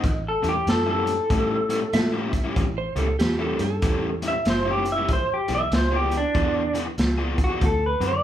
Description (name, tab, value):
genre	electric blues shuffle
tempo	95 BPM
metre	4/4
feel	swing 63% on 8ths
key	A mixolydian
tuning	A4 = 440 Hz
part	electric guitar through a small old amp	melody	0.0-8.2 s	D4 to E5	-24 LUFS	equal	none
part	overdriven semi-hollow guitar	riff	0.0-8.2 s	A2 to A4	-29 LUFS	left 2 dB	none
part	vintage muted fingered electric bass	bass	0.0-8.2 s	E1 to A2	-28 LUFS	equal	none
part	crunchy breakbeat drum kit	drums	0.0-8.1 s	hi-hat, kick drum, snare drum	-25 LUFS	equal	none
part	clean lap steel guitar	second line	1.9-4.1 s	G4 to E5	-29 LUFS	right 4 dB	none
room	moderate large studio reverb, RT60 0.8 s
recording	band playing live in one room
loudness	-20 LUFS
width	side -11 dB against mid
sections	0.0-8.2 A section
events	none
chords	0.0 A7; 5.1 E7; 7.6 D7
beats	| 0.03 0.66 1.29 1.93 | 2.56 3.19 3.82 4.45 | 5.09 5.72 6.35 6.98 | 7.61